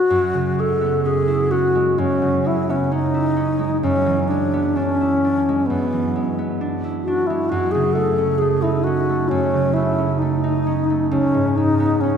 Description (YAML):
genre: classical, impressionist duo for alto flute and harp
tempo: 66 BPM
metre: 4/4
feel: rubato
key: F# dorian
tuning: A4 = 438 Hz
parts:
  - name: bright wooden-headed alto flute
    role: melody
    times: 0.0-12.2 s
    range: B3 to A4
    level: -19 LUFS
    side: left 2 dB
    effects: none
  - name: concert harp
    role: accompaniment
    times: 0.1-12.2 s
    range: C#2 to E4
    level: -21 LUFS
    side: right 3 dB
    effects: none
room: wet cathedral reverb, RT60 3.9 s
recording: recorded in a church or concert hall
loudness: -17 LUFS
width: side -7 dB against mid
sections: 0.1-12.2 A section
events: none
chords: 0.1 F#9sus4; 3.8 E9/F#; 7.5 F#m6; 11.1 C#7(no3)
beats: | 0.09 1.04 1.97 2.89 | 3.81 4.75 5.68 6.59 | 7.50 8.41 9.30 10.20 | 11.10 12.01